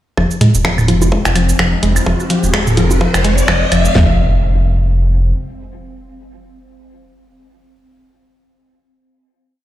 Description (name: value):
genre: minimal techno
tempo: 127 BPM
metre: 4/4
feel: swing 57% on 16ths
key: F minor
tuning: A4 = 440 Hz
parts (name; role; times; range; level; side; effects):
- mallet-like synth pluck; riff; 0.2-4.2 s; F3 to Ab3; -19 LUFS; left 1 dB; chorus, sidechain pumping, ping-pong delay
- round analog bass; bass; 0.2-5.3 s; Eb1 to F1; -14 LUFS; equal; sidechain pumping
- garage drum kit; drums; 0.2-4.1 s; kick drum, snare drum, toms; -17 LUFS; equal; high-pass filter on kick, high-pass filter on snare, high-pass filter on toms, high-pass filter on room
- electronic woodblock, toms and bongos; percussion; 0.2-3.8 s; none; -17 LUFS; right 2 dB; digital delay
- riser and impact; sound effects; 1.2-8.1 s; none; -21 LUFS; left 1 dB; none
- swarming drone; texture; 0.6-4.0 s; C4; -28 LUFS; left 1 dB; built-in reverb, sidechain pumping
- garage drum kit; drums; 0.3-3.9 s; finger snaps, hi-hat, shaker; -19 LUFS; equal; high-pass filter on perc, high-pass filter on hats, high-pass filter on snare, high-pass filter on room
room: light reverb, digital ambience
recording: played on a big sound system in a bare room, large studio reverb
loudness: -11 LUFS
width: side -13 dB against mid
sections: 0.2-4.0 build; 4.0-7.7 final note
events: build-up 0.2-4.0; riser 1.2-4.0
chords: 0.2 Fm; 4.0 N.C.